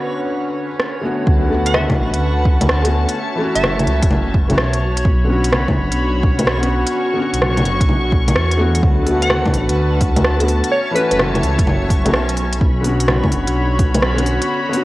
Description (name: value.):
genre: future garage.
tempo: 127 BPM.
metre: 4/4.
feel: swing 66% on 16ths.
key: B minor.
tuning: A4 = 440 Hz.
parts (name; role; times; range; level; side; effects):
felt-muted upright piano; accompaniment; 0.0-14.8 s; D3 to F#4; -22 LUFS; left 1 dB; sidechain pumping, cassette tape, tape echo.
dark studio string section; sustained chords; 0.0-14.8 s; D3 to C#6; -23 LUFS; equal; sidechain pumping, cassette tape.
backwards swelling texture; texture; 0.0-14.8 s; C#4 to C#6; -31 LUFS; right 1 dB; built-in reverb, cassette tape.
organic electronic drum kit; drums; 0.8-14.8 s; bongos, hi-hat, rim click; -19 LUFS; equal; overdrive, cassette tape.
dark detuned saw bass; bass; 1.3-14.4 s; F#1 to E2; -19 LUFS; equal; tube saturation, sidechain pumping.
electronic kick drum; drums; 1.3-13.9 s; none; -17 LUFS; equal; overdrive, cassette tape.
glassy wavetable pluck; melody; 1.7-4.0, 9.2-11.2 s; B4 to F#5; -22 LUFS; equal; chorus, cassette tape, tape echo.
room: light reverb, digital ambience.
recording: home recording on cassette.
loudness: -14 LUFS.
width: side -17 dB against mid.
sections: 0.0-1.3 A section; 1.3-14.8 B section.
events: filter sweep on string section 0.0-1.3.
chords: 0.0 Bmadd9; 1.3 D6; 3.2 F#m7; 5.1 Bmadd9; 8.8 D6; 10.7 F#m7; 12.6 Bmadd9.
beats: 0.33 0.80 | 1.27 1.74 2.22 2.69 | 3.16 3.63 4.11 4.58 | 5.05 5.52 6.00 6.47 | 6.94 7.41 7.88 8.36 | 8.83 9.30 9.78 10.25 | 10.72 11.19 11.66 12.14 | 12.61 13.08 13.55 14.03 | 14.50.